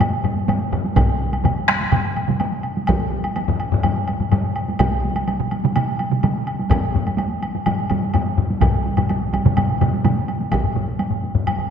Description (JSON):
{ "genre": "japanese traditional, taiko drum ensemble", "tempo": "126 BPM", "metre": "4/4", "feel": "straight", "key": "none", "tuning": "none", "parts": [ { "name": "taiko ensemble", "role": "percussion", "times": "0.0-11.7 s", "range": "none", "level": "-24 LUFS", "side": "right 2 dB", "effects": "none" }, { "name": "taiko ensemble", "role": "percussion", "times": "0.0-11.7 s", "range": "none", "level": "-21 LUFS", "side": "left 4 dB", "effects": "none" }, { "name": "woodblock", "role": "percussion", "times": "0.0-11.6 s", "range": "none", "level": "-26 LUFS", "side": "right 1 dB", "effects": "none" }, { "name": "taiko ensemble", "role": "percussion", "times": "1.0-10.2 s", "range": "none", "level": "-23 LUFS", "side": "right 5 dB", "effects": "none" }, { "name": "taiko ensemble", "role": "percussion", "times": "1.0-10.6 s", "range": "none", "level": "-23 LUFS", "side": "equal", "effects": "none" } ], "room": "wet concert hall reverb, RT60 1.9 s", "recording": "none", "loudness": "-18 LUFS", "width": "side -7 dB against mid", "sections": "0.0-10.5 A section; 10.5-11.7 B section", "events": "none", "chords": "none", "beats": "0.00 0.48 | 0.96 1.44 1.92 2.40 | 2.88 3.36 3.84 4.32 | 4.80 5.28 5.75 6.23 | 6.71 7.18 7.66 8.14 | 8.62 9.09 9.57 10.04 | 10.52 11.00 11.47" }